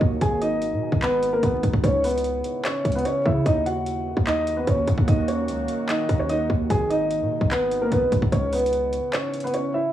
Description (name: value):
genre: hip hop, trap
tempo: 148 BPM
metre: 4/4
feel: half-time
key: unclear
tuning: A4 = 440 Hz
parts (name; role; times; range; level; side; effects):
- deep dark ambient pad; sustained chords; 0.0-9.9 s; Cb3 to Gb4; -31 LUFS; right 2 dB; chorus, built-in reverb, cassette tape
- hard-hitting 808-style bass; bass; 0.0-9.0 s; Ab1 to Db3; -28 LUFS; equal; none
- trap drum kit; drums; 0.0-9.6 s; handclaps, hi-hat, kick drum; -24 LUFS; equal; cassette tape
- dark grand piano; melody; 0.2-9.9 s; Bb3 to Ab5; -23 LUFS; equal; low-pass filter, cassette tape, analog delay
room: light reverb, digital ambience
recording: home recording on cassette, vinyl crackle, studio reverb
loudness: -20 LUFS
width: side -12 dB against mid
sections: 0.0-9.9 A section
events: break 9.1-9.9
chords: 0.2 Abm; 1.8 Dbm7; 3.5 Ebm; 6.7 Abm; 8.3 Dbm7